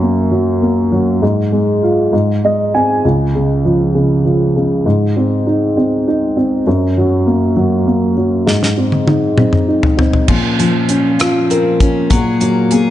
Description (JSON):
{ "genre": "six-eight pop ballad", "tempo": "66 BPM (dotted quarters)", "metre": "6/8", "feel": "straight", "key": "unclear", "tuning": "A4 = 440 Hz", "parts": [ { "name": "dark upright piano", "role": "accompaniment", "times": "0.0-12.9 s", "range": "Db2 to Ab5", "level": "-12 LUFS", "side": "equal", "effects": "none" }, { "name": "damped 70s drum kit", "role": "drums", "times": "8.5-12.9 s", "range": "crash cymbal, hi-hat, kick drum, rim click, snare drum, toms", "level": "-15 LUFS", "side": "left 1 dB", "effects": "none" }, { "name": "picked steel-string acoustic guitar", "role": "arpeggios", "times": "10.3-12.9 s", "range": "F3 to Ab4", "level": "-18 LUFS", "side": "left 5 dB", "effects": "slapback echo" } ], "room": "light reverb, small room ambience", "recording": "nothing above 10.4 kHz", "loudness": "-11 LUFS", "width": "side -12 dB against mid", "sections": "0.0-10.3 A section; 10.3-12.9 B section", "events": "upright piano fill 2.1-3.0; drum fill 8.5-10.3", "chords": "0.0 Gb; 1.2 Fm/Ab; 2.1 Ab; 3.0 Db; 4.9 Ab; 6.7 Gb; 8.5 Ab; 10.3 Bbmadd9; 12.1 Gbadd9/Bb" }